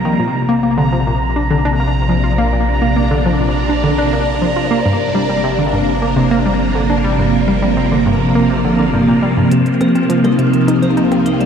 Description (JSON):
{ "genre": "ambient, sequencer-driven space music", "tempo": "103 BPM", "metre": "4/4", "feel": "straight", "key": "unclear", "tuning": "A4 = 440 Hz", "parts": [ { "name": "phased string machine", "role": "sustained chords", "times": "0.0-11.5 s", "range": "C3 to Eb4", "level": "-15 LUFS", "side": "equal", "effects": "ensemble chorus, phaser" }, { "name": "analog pluck", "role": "riff", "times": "0.0-11.5 s", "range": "G2 to F4", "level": "-18 LUFS", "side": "left 1 dB", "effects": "chorus, ping-pong delay" }, { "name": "warm sub bass", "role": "bass", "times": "0.0-11.5 s", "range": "G1 to C2", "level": "-21 LUFS", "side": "equal", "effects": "none" }, { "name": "bubbling stepped-filter texture", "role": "texture", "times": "0.0-11.5 s", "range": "G5 to Bb5", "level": "-25 LUFS", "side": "right 4 dB", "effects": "chorus, built-in reverb" }, { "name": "vibraphone with hard mallets", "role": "arpeggios", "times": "9.5-11.5 s", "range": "C4 to G4", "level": "-18 LUFS", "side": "right 2 dB", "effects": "auto-pan, ping-pong delay" }, { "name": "electronic hi-hat and percussion blips", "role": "percussion", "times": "9.5-11.5 s", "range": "none", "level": "-31 LUFS", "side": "equal", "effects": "ping-pong delay" } ], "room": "moderate spring reverb, RT60 2.3 s", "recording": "echo-heavy mix", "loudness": "-12 LUFS", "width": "side -7 dB against mid", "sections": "0.0-9.5 A section; 9.5-11.5 B section", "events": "filter sweep on synth arpeggio sound 9.5-11.5", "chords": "0.2 Bb; 4.9 Gm; 9.5 Cm" }